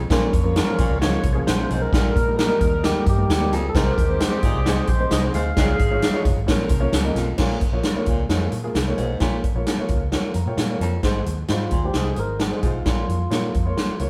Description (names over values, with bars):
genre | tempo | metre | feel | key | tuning
uptempo 1960s-style soul | 132 BPM | 4/4 | straight | Bb dorian | A4 = 440 Hz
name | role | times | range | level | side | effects
breathy baritone saxophone | riff | 0.0-13.0 s | F2 to Bb2 | -32 LUFS | equal | none
vintage muted fingered electric bass | bass | 0.0-14.1 s | F1 to Bb2 | -27 LUFS | equal | none
clear saxophone section | second line | 0.1-7.1 s | Eb3 to Db5 | -34 LUFS | equal | none
dark upright piano | accompaniment | 0.1-14.1 s | F3 to Bb5 | -29 LUFS | equal | none
swinging big-band drum kit | drums | 0.1-14.1 s | crash cymbal, hi-hat, kick drum, snare drum | -24 LUFS | equal | none
tonewheel organ | melody | 0.6-6.2, 11.5-14.0 s | F4 to F5 | -29 LUFS | equal | slow rotary speaker
room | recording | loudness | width
moderate studio reverb, RT60 0.8 s | band playing live in one room | -21 LUFS | mono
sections
0.0-7.4 A section; 7.4-11.0 B section; 11.0-14.1 C section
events
upright piano fill 10.1-11.0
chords
0.1 Bbm; 1.9 Eb/Bb; 3.7 Ab; 5.6 Dbadd9; 6.5 Bbm; 11.0 Ab; 12.9 Bbm